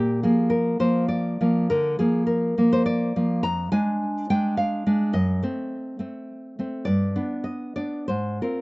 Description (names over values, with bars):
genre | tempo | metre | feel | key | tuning
romantic piece for solo classical guitar | 104 BPM | 3/4 | rubato | unclear | A4 = 440 Hz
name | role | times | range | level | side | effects
nylon-string guitar | solo | 0.0-8.6 s | F2 to Bb5 | -21 LUFS | equal | none
room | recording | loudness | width
light reverb | recorded outdoors, with no room sound, nothing above 7.8 kHz | -21 LUFS | side -25 dB against mid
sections
0.0-8.6 A section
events
none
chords
0.0 Bb; 1.7 Bb/D; 3.4 Ddim/F; 5.1 F#dim7; 6.9 G; 8.1 Fm/Ab